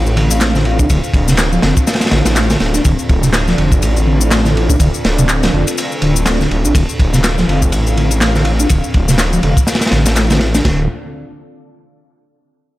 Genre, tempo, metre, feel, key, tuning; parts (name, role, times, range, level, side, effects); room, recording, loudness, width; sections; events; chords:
breakbeat, breaks; 123 BPM; 4/4; swing 58% on 16ths; D minor; A4 = 440 Hz
dark analog pad; sustained chords; 0.0-10.9 s; C4 to F5; -22 LUFS; left 1 dB; chorus, sidechain pumping
detuned saw bass; bass; 0.0-10.9 s; D1 to A1; -15 LUFS; equal
electronic shaker and handclaps; drums; 0.1-10.6 s; -21 LUFS; left 2 dB
mellow tonewheel organ; riff; 0.2-10.9 s; C3 to D4; -18 LUFS; equal; chorus vibrato, fast rotary speaker, low-pass filter
crunchy breakbeat drum kit; drums; 0.2-10.8 s; kick drum, ride cymbal, snare drum; -15 LUFS; equal
little or no reverb; -11 LUFS; side -16 dB against mid
0.0-10.7 A section; 10.7-12.6 B section
filter sweep on tonewheel organ 0.0-10.7
0.0 Dm7